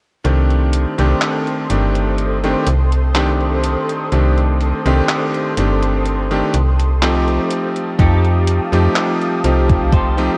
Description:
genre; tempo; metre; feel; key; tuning
vaporwave; 62 BPM; 4/4; straight; C dorian; A4 = 440 Hz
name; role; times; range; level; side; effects
bright electric grand piano; accompaniment; 0.2-10.4 s; Eb3 to G4; -21 LUFS; equal; subtle chorus, tape echo
lush unison pad; sustained chords; 0.2-10.4 s; G4 to Eb6; -27 LUFS; equal; chorus, phaser
slap-like FM bass; bass; 0.2-10.3 s; G1 to F2; -18 LUFS; equal; tube saturation
detuned 8-bit digital drum machine; drums; 0.2-10.4 s; handclaps, hi-hat; -26 LUFS; equal; overdrive, gated reverb
clean electric guitar; riff; 8.0-10.3 s; Eb4 to C5; -28 LUFS; equal; lush chorus, tape echo
electronic kick drum; drums; 8.0-10.1 s; none; -17 LUFS; equal; overdrive
room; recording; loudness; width
light reverb; cassette tape; -16 LUFS; mono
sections
0.2-10.4 A section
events
none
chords
0.2 Cm69; 7.5 F9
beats
| 0.25 1.22 2.19 3.15 | 4.12 5.09 6.06 7.02 | 7.99 8.96 9.93

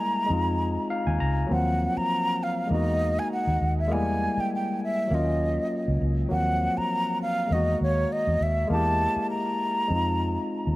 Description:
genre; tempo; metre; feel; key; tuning
lush 1970s-style soul; 100 BPM; 4/4; swing 54% on 16ths; Eb dorian; A4 = 440 Hz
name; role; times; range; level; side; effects
breathy mellow concert flute; melody; 0.0-10.8 s; Db5 to Bb5; -27 LUFS; equal; tape echo
barky tine electric piano; accompaniment; 0.0-10.8 s; D#3 to Bb5; -28 LUFS; left 1 dB; none
vintage muted fingered electric bass; bass; 0.3-10.8 s; Db2 to F2; -26 LUFS; equal; none
room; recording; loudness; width
light reverb, small room ambience; none; -23 LUFS; side -18 dB against mid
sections
0.0-6.3 A section; 6.3-10.8 A section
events
tine electric piano fill 0.6-1.5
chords
0.3 Fm7; 1.5 Ebm69; 2.7 Emaj9#11; 3.9 Ebadd11 (rootless); 5.1 Ebm9; 6.3 Ebm69; 7.5 Emaj9#11; 8.7 Gm69/E; 9.9 Fm7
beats
0.30 0.90 | 1.50 2.10 2.70 3.31 | 3.91 4.51 5.11 5.71 | 6.31 6.91 7.51 8.11 | 8.71 9.31 9.91 10.51

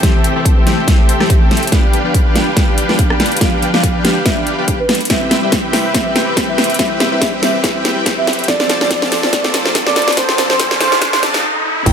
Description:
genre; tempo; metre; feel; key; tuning
future bass; 142 BPM; 4/4; swing 55% on 16ths, half-time; unclear; A4 = 440 Hz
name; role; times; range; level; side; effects
warm velvety synth lead; melody; 0.0-11.2 s; B4 to G5; -20 LUFS; right 2 dB; chorus, sidechain pumping, digital delay
glassy digital keys; accompaniment; 0.0-11.4 s; E3 to D5; -22 LUFS; left 4 dB; chorus, sidechain pumping, dub echo
warm studio string section; sustained chords; 0.0-11.4 s; E3 to C5; -28 LUFS; left 1 dB; none
dense compressed supersaw; riff; 0.0-11.9 s; C4 to A5; -19 LUFS; equal; sidechain pumping, low-pass filter, dub echo
big-room dance drum kit; drums; 0.0-11.9 s; crash cymbal, hi-hat, rim click, snare drum; -16 LUFS; equal; none
electronic kick drum; drums; 0.0-11.9 s; none; -15 LUFS; equal; none
riser and impact; sound effects; 7.3-11.9 s; none; -23 LUFS; equal; none
wide unison pluck; arpeggios; 11.9 s; G5; -22 LUFS; right 4 dB; sidechain pumping
fat analog bass; bass; 11.9 s; A1; -12 LUFS; equal; sidechain pumping
room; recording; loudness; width
light reverb, digital ambience; high-pass filter; -11 LUFS; side -7 dB against mid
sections
0.0-11.9 A section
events
build-up 0.0-11.9; drum fill 0.0-11.4; filter sweep on supersaw synth 0.0-11.9; filter sweep on soft synth lead 0.0-11.9; filter sweep 0.0-11.9; riser 7.3-11.9; stop 11.4-11.9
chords
0.0 Am7; 1.7 G7; 5.1 Cmaj7; 8.5 Dm7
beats
| 0.03 0.46 0.88 1.30 | 1.72 2.15 2.57 2.99 | 3.41 3.83 4.26 4.68 | 5.10 5.53 5.95 6.37 | 6.79 7.21 7.64 8.06 | 8.48 8.91 9.33 9.75 | 10.17 10.60 11.02 11.44 | 11.86

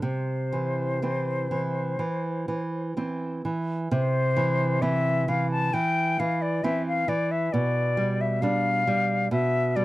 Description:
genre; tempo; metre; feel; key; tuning
romantic duo for flute and classical guitar; 59-68 BPM; 4/4; rubato; C major; A4 = 439 Hz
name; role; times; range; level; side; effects
bright concert flute; melody; 0.0-9.8 s; C5 to A5; -27 LUFS; left 3 dB; none
nylon-string guitar; accompaniment; 0.0-9.8 s; B2 to D4; -26 LUFS; right 2 dB; none
room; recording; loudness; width
little or no reverb; dry, close 1970s-style studio recording; -23 LUFS; side -17 dB against mid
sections
0.0-3.9 A section; 3.9-9.8 B section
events
none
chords
0.0 C; 7.5 G7/B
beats
| 0.02 1.03 2.00 2.97 | 3.92 4.82 5.74 6.64 | 7.53 8.42 9.31

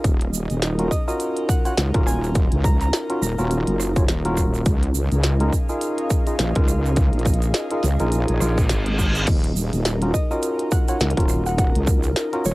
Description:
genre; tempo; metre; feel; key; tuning
glitch hop; 104 BPM; 4/4; swing 58% on 16ths; Eb minor; A4 = 436 Hz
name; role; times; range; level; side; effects
tine electric piano; stabs; 0.0-12.5 s; Db4 to Eb5; -26 LUFS; equal; sidechain pumping, cassette tape, tape echo
wobble bass; bass; 0.0-12.5 s; Eb1 to Db2; -21 LUFS; equal; chorus
electronic kick drum; drums; 0.0-12.0 s; none; -20 LUFS; equal; cassette tape
glitchy drum kit; drums; 0.0-12.4 s; crash cymbal, hi-hat, rim click, snare drum; -26 LUFS; equal; overdrive, cassette tape
egg shaker; percussion; 0.0-12.5 s; none; -33 LUFS; right 12 dB; none
airy breathy pad; texture; 0.0-12.5 s; Db4 to F5; -30 LUFS; equal; chorus, sidechain pumping, cassette tape
woody wave-folded pluck; melody; 0.9-3.7, 10.1-12.5 s; Db5 to Bb5; -30 LUFS; equal; chorus, cassette tape, tape echo
reverse cymbal; sound effects; 8.3-9.3 s; none; -26 LUFS; equal; none
room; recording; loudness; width
little or no reverb; home recording on cassette; -18 LUFS; side -20 dB against mid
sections
0.0-12.5 A section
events
reverse cymbal 8.3-9.3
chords
0.0 Ebm7; 4.7 Db69; 9.3 Ebm7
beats
| 0.05 0.62 1.20 1.78 | 2.35 2.93 3.51 4.09 | 4.66 5.24 5.82 6.39 | 6.97 7.55 8.12 8.70 | 9.28 9.86 10.43 11.01 | 11.59 12.16

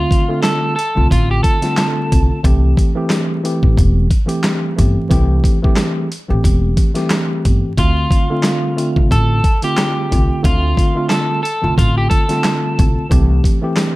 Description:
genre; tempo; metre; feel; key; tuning
hip hop, boom-bap hip-hop; 90 BPM; 4/4; swing 57% on 16ths; D minor; A4 = 440 Hz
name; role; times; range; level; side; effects
electric guitar at the edge of break-up; melody; 0.0-2.4, 7.8-13.1 s; F4 to A4; -20 LUFS; equal; high-pass filter, low-pass filter, digital delay
tine electric piano; accompaniment; 0.0-14.0 s; D3 to G4; -19 LUFS; equal; overdrive, medium stereo tremolo, cassette tape, high-pass filter, low-pass filter
upright bass; bass; 0.0-13.4 s; E1 to D2; -16 LUFS; equal; none
dusty soul sampler-style drum kit; drums; 0.1-14.0 s; handclaps, hi-hat, kick drum, snare drum; -15 LUFS; equal; none
room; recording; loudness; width
little or no reverb; vinyl crackle; -13 LUFS; side -19 dB against mid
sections
0.0-14.0 A section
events
none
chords
0.0 Dm7; 2.4 Am7; 7.8 Dm7; 13.1 Am7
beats
0.44 1.11 1.78 | 2.44 3.11 3.78 4.44 | 5.11 5.78 6.44 7.11 | 7.78 8.44 9.11 9.78 | 10.44 11.11 11.78 12.44 | 13.11 13.78

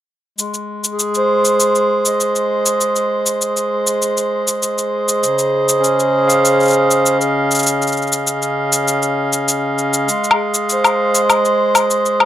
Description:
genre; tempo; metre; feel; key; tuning
folktronica; 99 BPM; 4/4; straight; Ab major; A4 = 440 Hz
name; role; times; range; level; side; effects
hand-pumped harmonium; sustained chords; 0.4-12.3 s; Db3 to F5; -14 LUFS; right 1 dB; none
cabasa and woodblock; drums; 0.4-12.3 s; none; -16 LUFS; left 2 dB; none
room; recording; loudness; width
moderate studio reverb, RT60 0.6 s; none; -13 LUFS; side -11 dB against mid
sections
0.4-12.3 A section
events
none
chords
0.4 Ab; 5.2 Dbadd9; 10.1 Ab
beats
| 0.39 0.99 1.60 2.21 | 2.81 3.42 4.03 4.63 | 5.24 5.84 6.45 7.05 | 7.66 8.27 8.87 9.48 | 10.09 10.69 11.30 11.90

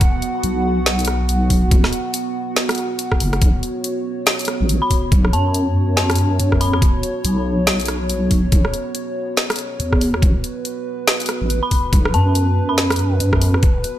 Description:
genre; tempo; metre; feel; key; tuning
deep dubstep; 141 BPM; 4/4; swing 59% on 16ths, half-time; unclear; A4 = 440 Hz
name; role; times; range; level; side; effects
dark analog pad; sustained chords; 0.0-14.0 s; B3 to F#5; -24 LUFS; right 1 dB; chorus
deep house drum kit; drums; 0.0-13.9 s; hi-hat, rim click, snare drum; -20 LUFS; equal; studio reverb
electronic kick drum; drums; 0.0-13.7 s; none; -16 LUFS; equal; studio reverb
deep soft wobble bass; bass; 0.4-13.6 s; F#1 to F#2; -17 LUFS; equal; chorus
dark detuned synth bell; melody; 4.8-6.8, 11.6-13.1 s; A5 to B5; -26 LUFS; left 1 dB; chorus, dub echo
room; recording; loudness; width
digital ambience; none; -16 LUFS; side -12 dB against mid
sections
0.0-14.0 A section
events
none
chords
0.0 Bsus2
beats
| 0.01 0.44 0.86 1.29 | 1.71 2.14 2.57 2.99 | 3.42 3.84 4.27 4.69 | 5.12 5.54 5.97 6.39 | 6.82 7.25 7.67 8.10 | 8.52 8.95 9.37 9.80 | 10.22 10.65 11.08 11.50 | 11.93 12.35 12.78 13.20 | 13.63

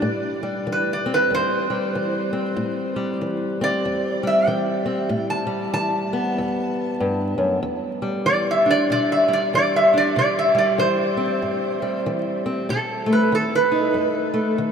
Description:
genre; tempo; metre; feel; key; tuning
acoustic country blues, solo or duo; 95 BPM; 4/4; swing 61% on 8ths; unclear; A4 = 440 Hz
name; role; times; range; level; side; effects
metal-body resonator slide guitar; melody; 0.0-14.2 s; A4 to A5; -21 LUFS; right 1 dB; none
fingerpicked old ladder-braced acoustic guitar; accompaniment; 0.0-14.7 s; E2 to D#4; -23 LUFS; left 1 dB; none
room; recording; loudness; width
wet huge ambient reverb, RT60 7.1 s; in a vast, echoing space, vinyl crackle; -19 LUFS; side -7 dB against mid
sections
0.0-14.7 A section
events
resonator guitar played with a steel bar solo 0.0-14.7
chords
0.1 Am9; 7.6 Em7; 10.2 C; 12.7 B7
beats
| 0.05 0.68 1.31 1.95 | 2.58 3.21 3.84 4.47 | 5.10 5.73 6.36 7.00 | 7.63 8.26 8.89 9.52 | 10.15 10.79 11.42 12.05 | 12.68 13.31 13.95 14.58

